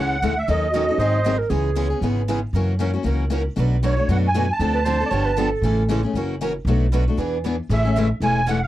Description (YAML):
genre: acoustic string swing (jazz manouche)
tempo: 233 BPM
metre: 4/4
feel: swing 56% on 8ths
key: A major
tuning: A4 = 440 Hz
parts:
  - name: musette accordion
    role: melody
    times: 0.0-1.4, 3.9-5.5, 7.7-8.7 s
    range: C#5 to A5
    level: -22 LUFS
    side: right 2 dB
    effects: slapback echo
  - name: picked steel-string acoustic guitar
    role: accompaniment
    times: 0.0-8.6 s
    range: B2 to A4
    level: -25 LUFS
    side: left 6 dB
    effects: none
  - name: picked steel-string acoustic guitar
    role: accompaniment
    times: 0.0-8.6 s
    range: B2 to B4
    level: -29 LUFS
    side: right 7 dB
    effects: none
  - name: upright bass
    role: bass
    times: 0.0-8.6 s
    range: E1 to F#2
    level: -21 LUFS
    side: equal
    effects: none
  - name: breathy clarinet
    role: second line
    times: 0.7-2.0, 4.7-5.9 s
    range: F#4 to D5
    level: -25 LUFS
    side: right 5 dB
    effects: none
room: light reverb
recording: dry, close 1970s-style studio recording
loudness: -18 LUFS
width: side -14 dB against mid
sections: 0.0-7.7 A section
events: none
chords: 0.5 D#m7b5; 1.0 G#7; 1.5 C#m7; 2.5 F#7; 3.6 Bm7; 4.6 Dm7; 5.1 G9; 5.6 Amaj7; 6.2 F#7; 6.7 Bm7; 7.2 E7; 7.7 Amaj7